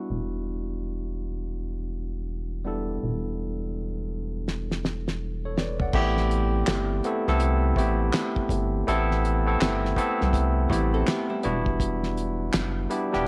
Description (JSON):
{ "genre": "R&B, neo-soul", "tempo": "82 BPM", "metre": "4/4", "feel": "swing 64% on 16ths", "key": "A minor", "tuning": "A4 = 438 Hz", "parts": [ { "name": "barky tine electric piano", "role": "accompaniment", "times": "0.0-13.3 s", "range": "G3 to F#5", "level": "-30 LUFS", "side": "equal", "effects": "none" }, { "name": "rubbery square bass", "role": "bass", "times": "0.1-13.3 s", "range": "E1 to C2", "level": "-30 LUFS", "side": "equal", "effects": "none" }, { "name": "cloth-damped thuddy drum kit", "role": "drums", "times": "4.5-13.2 s", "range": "crash cymbal, handclaps, hi-hat, kick drum, snare drum, toms", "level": "-31 LUFS", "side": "equal", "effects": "none" }, { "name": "vintage hollow-body jazz guitar", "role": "second line", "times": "10.7-11.6 s", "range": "G3 to A4", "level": "-35 LUFS", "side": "equal", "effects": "none" } ], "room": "small room ambience", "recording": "lossy compression artefacts", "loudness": "-26 LUFS", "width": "mono", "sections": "0.0-5.9 A section; 5.9-13.3 B section", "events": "drum fill 4.5-5.9", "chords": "0.0 Em9; 5.9 Am9; 11.4 Em9", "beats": "| 0.08 0.81 1.55 2.28 | 3.01 3.74 4.47 5.21 | 5.94 6.67 7.40 8.13 | 8.86 9.60 10.33 11.06 | 11.79 12.52 13.25" }